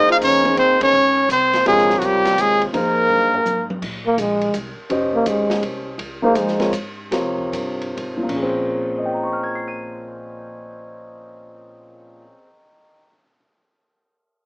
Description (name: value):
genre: modal jazz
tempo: 116-166 BPM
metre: 3/4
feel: swing 65% on 8ths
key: Bb dorian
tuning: A4 = 435 Hz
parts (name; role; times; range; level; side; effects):
- brilliant trumpet; melody; 0.0-3.7 s; Gb4 to F5; -15 LUFS; equal; none
- breathy trombone; second line; 0.0-6.7 s; Gb3 to F4; -20 LUFS; equal; none
- warm grand piano; accompaniment; 0.0-13.4 s; Bb2 to Eb7; -22 LUFS; equal; none
- upright bass; bass; 0.0-12.3 s; F1 to Bb2; -34 LUFS; equal; none
- open jazz drum kit; drums; 0.1-8.4 s; crash cymbal, hi-hat, kick drum, ride cymbal, snare drum, toms; -30 LUFS; equal; none
room: moderate studio ambience, RT60 0.5 s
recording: small speaker sound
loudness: -16 LUFS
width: side -31 dB against mid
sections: 0.0-3.8 A section; 3.8-8.5 B section; 8.5-11.6 C section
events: band accent 0.8; drum fill 3.1-3.8; trombone solo 3.8-8.5; slowing down 6.0-8.5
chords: 0.0 Bbm9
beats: 0.22 | 0.58 0.94 1.30 | 1.66 2.02 2.38 | 2.74 3.10 3.46 | 3.82 4.18 4.54 | 4.91 5.27 5.63 | 5.99 6.35 6.72 | 7.11 7.53 7.97 | 8.46 8.98 9.49 | 10.01 10.52 11.04